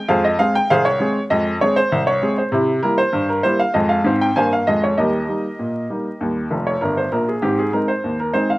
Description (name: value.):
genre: ragtime piano.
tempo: 98 BPM.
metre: 2/4.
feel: straight.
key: unclear.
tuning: A4 = 442 Hz.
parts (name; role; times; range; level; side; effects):
clear upright piano; solo; 0.0-8.6 s; F1 to Ab5; -16 LUFS; equal; none.
room: little or no reverb.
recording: recorded outdoors, with no room sound, vinyl crackle.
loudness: -16 LUFS.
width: side -19 dB against mid.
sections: 0.0-8.6 A section.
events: upright piano fill 6.5-7.4.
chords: 0.1 Fm; 2.5 C7; 3.7 Fm; 7.4 Ab.